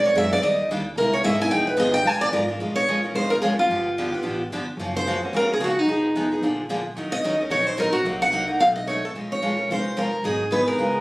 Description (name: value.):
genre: acoustic string swing (jazz manouche).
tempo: 220 BPM.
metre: 4/4.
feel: swing 58% on 8ths.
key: Bb minor.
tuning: A4 = 440 Hz.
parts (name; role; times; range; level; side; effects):
picked steel-string acoustic guitar; melody; 0.0-11.0 s; Eb4 to G#5; -21 LUFS; equal; none.
picked steel-string acoustic guitar; accompaniment; 0.0-11.0 s; B2 to Bb4; -25 LUFS; equal; none.
upright bass; bass; 0.0-11.0 s; F1 to Bb2; -35 LUFS; equal; none.
room: moderate studio reverb, RT60 0.8 s.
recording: recorded on a phone in the room, studio reverb.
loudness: -20 LUFS.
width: side -21 dB against mid.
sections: 0.0-2.6 A section; 2.6-11.0 B section.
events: steel-string acoustic guitar solo 0.0-2.6.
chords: 0.4 Ebmaj7; 1.0 Caug7; 1.5 Fm7b5; 2.1 Bb7; 2.6 Bbm7; 3.7 G9; 4.8 Gbmaj7; 5.9 Fm7b5; 6.4 Bb7; 7.0 Ebm7; 8.1 Cm7b5; 8.6 B7; 9.1 Bbm7; 10.2 Abm7.